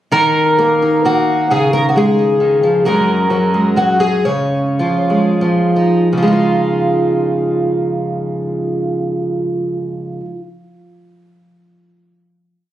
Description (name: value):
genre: folk, solo fingerstyle acoustic guitar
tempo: 78-134 BPM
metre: 3/4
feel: rubato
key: Db major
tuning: A4 = 440 Hz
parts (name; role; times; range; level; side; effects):
- fingerpicked twelve-string acoustic guitar; solo; 0.1-10.4 s; Gb2 to Db5; -12 LUFS; equal; none
room: light reverb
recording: recorded on a phone in the room, club reverb, compression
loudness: -12 LUFS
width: side -12 dB against mid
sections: 0.1-6.1 A section; 6.1-10.6 final chord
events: slowing down 2.9-6.1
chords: 0.1 Ebm; 1.5 Dbsus2; 2.9 Gbadd9; 4.3 Dbadd9